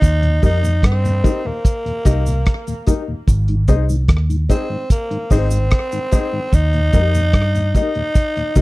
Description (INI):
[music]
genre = roots reggae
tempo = 74 BPM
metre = 4/4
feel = straight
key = Ab major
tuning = A4 = 436 Hz
[part]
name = growling tenor saxophone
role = melody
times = 0.0-8.6 s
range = Bb3 to Eb4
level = -22 LUFS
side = equal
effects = dub echo
[part]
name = vintage muted fingered electric bass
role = bass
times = 0.0-8.6 s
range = Ab1 to G2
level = -16 LUFS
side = equal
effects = none
[part]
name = cloth-damped thuddy drum kit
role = drums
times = 0.0-8.6 s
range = hi-hat, kick drum, rim click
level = -15 LUFS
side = equal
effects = none
[part]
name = cabasa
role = percussion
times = 0.0-8.6 s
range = none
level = -37 LUFS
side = right 6 dB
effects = none
[part]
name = mellow tonewheel organ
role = accompaniment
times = 0.2-8.6 s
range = Eb2 to Eb4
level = -25 LUFS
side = left 2 dB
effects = chorus vibrato, slow rotary speaker, slapback echo
[part]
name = dark concert grand piano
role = stabs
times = 0.4-8.6 s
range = Eb4 to Eb5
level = -24 LUFS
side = left 6 dB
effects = none
[sound]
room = little or no reverb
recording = dry, close 1970s-style studio recording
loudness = -14 LUFS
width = side -20 dB against mid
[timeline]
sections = 0.0-8.6 A section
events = none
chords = 0.0 Eb; 3.3 Ab; 6.5 Eb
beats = | 0.02 0.83 1.65 2.46 | 3.27 4.09 4.90 5.71 | 6.53 7.34 8.15